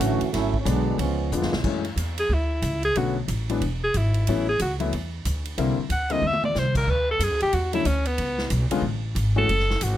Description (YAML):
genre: jazz, big band swing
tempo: 184 BPM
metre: 4/4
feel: swing 62% on 8ths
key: F# minor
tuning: A4 = 441 Hz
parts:
  - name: mellow trombone section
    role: second line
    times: 0.0-1.6 s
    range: E3 to F#4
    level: -26 LUFS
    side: right 5 dB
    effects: none
  - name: warm concert grand piano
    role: accompaniment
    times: 0.0-9.5 s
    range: D3 to F#4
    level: -27 LUFS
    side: left 6 dB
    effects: none
  - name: upright bass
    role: bass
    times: 0.0-10.0 s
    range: E1 to F#2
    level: -25 LUFS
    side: equal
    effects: none
  - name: swinging big-band drum kit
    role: drums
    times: 0.0-9.9 s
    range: crash cymbal, hi-hat, kick drum, ride cymbal, snare drum, toms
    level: -32 LUFS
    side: right 1 dB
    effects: none
  - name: bright alto saxophone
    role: melody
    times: 2.2-10.0 s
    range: B3 to F#5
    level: -24 LUFS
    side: equal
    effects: none
room: little or no reverb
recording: close, detailed microphones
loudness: -21 LUFS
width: side -12 dB against mid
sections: 0.0-1.6 A section; 1.6-10.0 B section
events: trombone section solo 0.0-1.6; drum fill 1.3-1.6, 6.2-6.6; alto saxophone solo 1.6-10.0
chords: 0.3 G#m7b5; 1.0 C#7b9; 1.6 F#m7; 3.0 Bm7; 3.6 E; 4.3 A6; 5.6 C9; 6.9 Dmaj7; 8.2 C#7(no3)